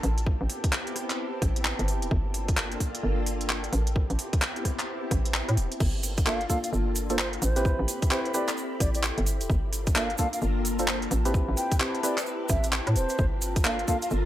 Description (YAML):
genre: UK garage, two-step garage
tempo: 130 BPM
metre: 4/4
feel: swing 62% on 16ths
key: unclear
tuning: A4 = 442 Hz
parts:
  - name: soft string machine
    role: sustained chords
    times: 0.0-14.3 s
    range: Bb3 to B5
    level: -36 LUFS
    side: equal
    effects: ensemble chorus, sidechain pumping
  - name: hollow knocking FM bass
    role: bass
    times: 0.0-14.3 s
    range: E1 to A2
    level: -28 LUFS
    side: equal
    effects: sidechain pumping
  - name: garage drum kit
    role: drums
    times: 0.0-14.1 s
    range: crash cymbal, handclaps, hi-hat, rim click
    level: -30 LUFS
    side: equal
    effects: none
  - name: warbly tape-like pad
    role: texture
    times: 0.0-14.3 s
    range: Bb3 to B5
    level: -37 LUFS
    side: left 2 dB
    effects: chorus, built-in reverb, sidechain pumping
  - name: electronic kick drum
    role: drums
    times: 0.3-14.0 s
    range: none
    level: -26 LUFS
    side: equal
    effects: none
  - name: egg shaker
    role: percussion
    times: 5.8-14.2 s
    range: none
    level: -37 LUFS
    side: right 3 dB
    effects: none
  - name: baroque flute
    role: melody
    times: 6.3-14.1 s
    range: C5 to G5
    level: -33 LUFS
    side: equal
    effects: tape echo
  - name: percussive organ stab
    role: stabs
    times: 6.3-14.0 s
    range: Bb3 to B4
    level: -31 LUFS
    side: equal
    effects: chorus
room: little or no reverb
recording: dry, gritty hardware recording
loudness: -24 LUFS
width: side -13 dB against mid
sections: 0.0-14.3 A section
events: fade-in on ambient pad 0.0-14.3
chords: 0.0 Am9; 2.1 Gm9; 3.7 Am9; 5.8 Gm9; 7.4 Am9; 9.5 Gm9; 11.1 Am9; 13.2 Gm9